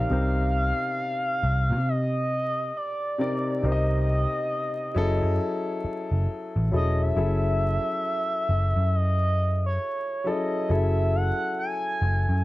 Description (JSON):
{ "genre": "R&B", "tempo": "68 BPM", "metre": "4/4", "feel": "swing 61% on 16ths", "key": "unclear", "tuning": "A4 = 439 Hz", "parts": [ { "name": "expressive synth lead", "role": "melody", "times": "0.0-12.4 s", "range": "Db5 to Ab5", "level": "-28 LUFS", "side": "equal", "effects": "chorus" }, { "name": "warm grand piano", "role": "accompaniment", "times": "0.0-12.4 s", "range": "C3 to Eb5", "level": "-30 LUFS", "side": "left 2 dB", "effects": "none" }, { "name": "vintage muted picked electric bass", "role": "bass", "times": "0.0-12.4 s", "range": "Fb1 to C3", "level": "-24 LUFS", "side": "equal", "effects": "none" } ], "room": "light reverb", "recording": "dark, warm production, vinyl crackle", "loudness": "-23 LUFS", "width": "side -18 dB against mid", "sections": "0.0-12.4 A section", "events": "none", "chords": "0.0 Cm9; 5.0 Gbm9" }